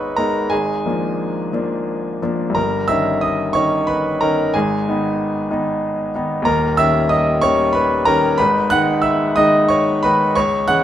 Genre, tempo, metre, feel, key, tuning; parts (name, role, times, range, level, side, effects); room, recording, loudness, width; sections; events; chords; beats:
classical, romantic character piece for solo piano; 87-95 BPM; 3/4; rubato; G# minor; A4 = 437 Hz
bright grand piano; solo; 0.0-10.8 s; D#1 to F#6; -15 LUFS; equal
moderate recital hall reverb, RT60 1.3 s; close, detailed microphones; -15 LUFS; side -11 dB against mid
0.0-10.8 A section
0.0 G#m; 0.5 A#7/G#; 2.6 D#7/G; 4.5 G#m; 6.5 D#7; 8.4 G#m
| 0.51 1.19 1.87 | 2.56 3.22 3.88 | 4.54 5.19 5.82 | 6.46 7.10 7.74 | 8.39 9.04 9.71 | 10.36